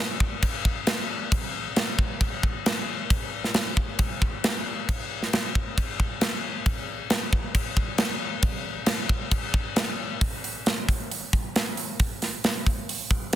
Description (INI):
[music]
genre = rock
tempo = 135 BPM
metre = 4/4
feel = straight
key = none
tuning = none
[part]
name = tight metal drum kit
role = drums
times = 0.2-13.4 s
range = crash cymbal, hi-hat, kick drum, snare drum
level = -24 LUFS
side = equal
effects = none
[sound]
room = light reverb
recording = dense, heavily limited modern master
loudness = -24 LUFS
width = side -12 dB against mid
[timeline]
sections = 0.0-10.2 A section; 10.2-13.4 B section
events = none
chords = none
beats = 0.43 0.88 | 1.32 1.77 2.22 2.66 | 3.11 3.56 4.00 4.45 | 4.89 5.34 5.78 6.23 | 6.67 7.12 7.56 8.00 | 8.45 8.89 9.33 9.78 | 10.22 10.66 11.11 11.55 | 11.99 12.44 12.88 13.33